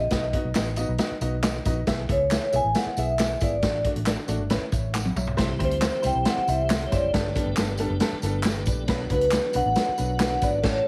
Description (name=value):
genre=uptempo 1960s-style soul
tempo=137 BPM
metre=4/4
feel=straight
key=unclear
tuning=A4 = 440 Hz
part: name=vibraphone with soft mallets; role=melody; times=0.0-10.9 s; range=B4 to G#5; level=-28 LUFS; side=equal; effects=analog delay
part: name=vintage muted fingered electric bass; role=bass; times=0.0-10.8 s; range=F#1 to D2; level=-32 LUFS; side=equal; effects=none
part: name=clear upright piano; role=accompaniment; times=0.1-10.8 s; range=E3 to F#5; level=-33 LUFS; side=equal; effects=none
part: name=swinging big-band drum kit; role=drums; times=0.1-10.8 s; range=crash cymbal, hi-hat, kick drum, snare drum, toms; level=-29 LUFS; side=equal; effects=none
part: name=tambourine and handclaps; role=percussion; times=0.1-10.5 s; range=none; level=-38 LUFS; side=equal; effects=none
part: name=tonewheel organ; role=sustained chords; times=5.4-10.9 s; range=E3 to A4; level=-38 LUFS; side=equal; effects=fast rotary speaker, overdrive, chorus vibrato
room=light reverb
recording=heavily compressed radio sound, multiband compression, vinyl crackle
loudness=-24 LUFS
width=mono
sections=0.0-10.9 A section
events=drum fill 4.9-5.4; band accent 10.6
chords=0.1 B; 1.9 E; 3.6 D/A; 4.5 Aadd9; 5.4 C; 7.1 Gadd9; 8.9 Bm